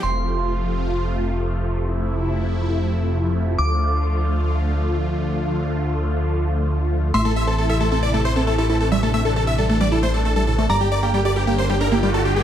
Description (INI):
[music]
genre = trance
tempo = 135 BPM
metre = 4/4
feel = straight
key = F major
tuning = A4 = 440 Hz
[part]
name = glassy synth bell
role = second line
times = 0.0-0.8, 3.6-4.4, 7.1-7.9, 10.7-11.5 s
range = Bb5 to D6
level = -28 LUFS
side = right 1 dB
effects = chorus, tremolo, dub echo
[part]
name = filtered supersaw swell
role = sustained chords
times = 0.0-12.4 s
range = C3 to G4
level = -24 LUFS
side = equal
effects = phaser
[part]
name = fat analog bass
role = bass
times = 0.0-12.4 s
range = F1 to D2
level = -22 LUFS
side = equal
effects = none
[part]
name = big supersaw lead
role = melody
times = 7.1-12.4 s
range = G4 to E5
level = -24 LUFS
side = equal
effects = dub echo
[part]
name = analog pluck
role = arpeggios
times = 7.1-12.3 s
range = A2 to A4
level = -24 LUFS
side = right 1 dB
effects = chorus, dub echo
[part]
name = riser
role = sound effects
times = 11.3-12.4 s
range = none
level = -26 LUFS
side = right 1 dB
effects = none
[sound]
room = light reverb, digital ambience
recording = none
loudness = -18 LUFS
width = side -10 dB against mid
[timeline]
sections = 0.0-12.4 A section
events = riser 11.3-12.4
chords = 0.0 F; 3.6 Dm; 7.1 Am; 10.7 Gm